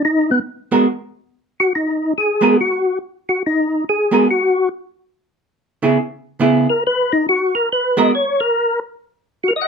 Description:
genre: jazz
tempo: 141 BPM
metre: 4/4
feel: swing 65% on 8ths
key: G# minor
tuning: A4 = 443 Hz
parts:
  - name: percussive tonewheel organ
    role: melody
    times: 0.0-9.7 s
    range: B3 to F#5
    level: -16 LUFS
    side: left 1 dB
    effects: slow rotary speaker, chorus vibrato
  - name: archtop guitar, miked and amplified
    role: accompaniment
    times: 0.7-8.1 s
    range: C#3 to A#4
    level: -14 LUFS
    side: right 3 dB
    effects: none
room: light reverb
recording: dark, warm production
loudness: -15 LUFS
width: side -6 dB against mid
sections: 0.0-9.7 A section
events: tonewheel organ solo 0.0-9.7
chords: 0.0 G#m9; 5.1 C#m7; 6.8 G#m9

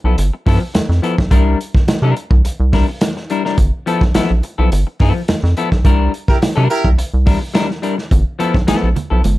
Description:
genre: funk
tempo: 106 BPM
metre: 4/4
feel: straight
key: G mixolydian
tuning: A4 = 439 Hz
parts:
  - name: semi-hollow electric guitar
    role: accompaniment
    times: 0.0-9.3 s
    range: F3 to Bb4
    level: -19 LUFS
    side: left 4 dB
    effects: wide subtle chorus
  - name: rubbery square bass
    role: bass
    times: 0.0-9.4 s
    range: G1 to C3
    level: -14 LUFS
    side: equal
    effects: none
  - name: crunchy breakbeat drum kit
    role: drums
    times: 0.2-9.4 s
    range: hi-hat, kick drum, snare drum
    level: -15 LUFS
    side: equal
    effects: none
  - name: warm horn section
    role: second line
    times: 6.3-6.9 s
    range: E4 to Bb4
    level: -18 LUFS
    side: right 2 dB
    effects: none
  - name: congas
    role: percussion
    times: 8.4-9.4 s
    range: none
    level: -23 LUFS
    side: right 4 dB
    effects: none
room: light reverb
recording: dark, warm production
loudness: -13 LUFS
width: side -17 dB against mid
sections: 0.0-9.4 A section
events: band accent 5.8-8.1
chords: 0.0 G13; 1.3 C9; 3.6 G13; 5.8 C9; 8.1 G13

